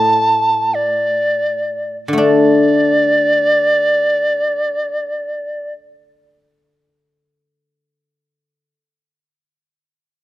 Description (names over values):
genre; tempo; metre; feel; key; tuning
chinese traditional, Chinese chamber ensemble; free time; none; none; unclear; A4 = 440 Hz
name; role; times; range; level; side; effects
large dizi; melody; 0.0-5.7 s; D5 to A5; -14 LUFS; equal; none
guzheng; accompaniment; 0.0-8.7 s; A2 to D4; -16 LUFS; left 2 dB; none
room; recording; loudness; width
light reverb; close, detailed microphones; -13 LUFS; side -15 dB against mid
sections
0.0-2.2 A section; 2.2-6.2 B section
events
slowing down 0.0-2.2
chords
none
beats
free time